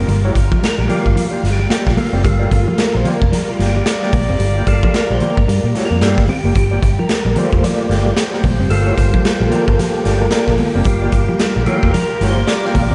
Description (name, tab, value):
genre	funk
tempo	111 BPM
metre	4/4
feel	swing 60% on 16ths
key	G minor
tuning	A4 = 440 Hz
part	warm horn section	second line	0.0-12.9 s	F4 to D5	-29 LUFS	equal	none
part	mellow electric guitar	accompaniment	0.0-12.9 s	Bb3 to D5	-26 LUFS	equal	none
part	phased string machine	sustained chords	0.0-12.9 s	G3 to G4	-29 LUFS	equal	ensemble chorus, phaser
part	clean electric guitar	riff	0.0-12.9 s	F3 to C4	-26 LUFS	equal	none
part	percussive tonewheel organ	stabs	0.0-12.9 s	G3 to F5	-23 LUFS	equal	chorus vibrato, fast rotary speaker
part	vintage muted fingered electric bass	bass	0.0-12.9 s	F1 to Bb2	-20 LUFS	equal	none
part	raw garage drum kit	drums	0.1-12.9 s	hi-hat, kick drum, snare drum	-20 LUFS	equal	none
part	congas	percussion	0.1-12.9 s	none	-29 LUFS	equal	none
room	light reverb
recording	nothing above 11.0 kHz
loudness	-15 LUFS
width	mono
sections	0.0-12.9 A section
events	tonewheel organ solo 0.0-12.9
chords	0.0 Gm7